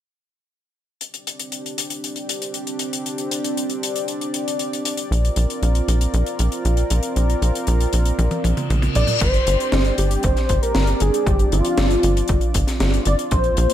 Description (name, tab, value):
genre	synthwave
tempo	117 BPM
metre	4/4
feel	straight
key	unclear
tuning	A4 = 440 Hz
part	warm analog pad	sustained chords	1.0-13.7 s	Bb3 to D5	-26 LUFS	right 1 dB	chorus, sidechain pumping
part	deep reggae drum kit	drums	1.0-13.7 s	crash cymbal, hi-hat, snare drum, toms	-25 LUFS	left 1 dB	small room ambience, gated reverb
part	tight sequencer bass	bass	5.1-13.7 s	G1 to Bb1	-19 LUFS	equal	sidechain pumping
part	reverse cymbal	sound effects	8.6-9.2 s	none	-27 LUFS	left 6 dB	none
part	wide unison lead	melody	9.0-13.7 s	F4 to D5	-22 LUFS	left 1 dB	ping-pong delay
part	electronic kick drum	drums	9.2-13.4 s	none	-21 LUFS	equal	overdrive, small room ambience
room	light reverb, studio ambience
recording	none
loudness	-18 LUFS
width	side -11 dB against mid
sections	1.0-9.2 A section; 9.2-13.7 B section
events	drum fill 8.2-9.2; reverse cymbal 8.6-9.2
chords	1.0 Gsus4; 5.1 Bbadd9; 9.2 Gsus4